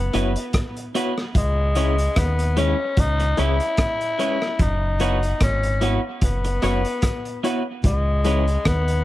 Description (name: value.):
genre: roots reggae.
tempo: 74 BPM.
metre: 4/4.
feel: swing 56% on 16ths.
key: C# minor.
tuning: A4 = 436 Hz.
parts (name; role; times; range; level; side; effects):
raspy tenor saxophone; melody; 0.0-9.0 s; G#3 to E4; -25 LUFS; left 2 dB; tape echo.
deep dub fingered electric bass; bass; 0.0-9.0 s; F#1 to D#2; -21 LUFS; equal; none.
electric guitar at the edge of break-up; accompaniment; 0.1-8.4 s; G#3 to B4; -28 LUFS; right 3 dB; spring reverb, tape echo.
barky reed electric piano; stabs; 0.1-8.5 s; E4 to C#5; -27 LUFS; left 7 dB; overdrive, fast tremolo.
crunchy breakbeat drum kit; drums; 0.1-9.0 s; hi-hat, kick drum, rim click; -24 LUFS; equal; none.
room: light reverb.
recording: lossy compression artefacts.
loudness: -19 LUFS.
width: side -15 dB against mid.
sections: 0.0-9.0 A section.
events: none.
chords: 0.0 F#7sus4; 1.4 C#m7; 4.6 F#7sus4; 7.8 C#m7.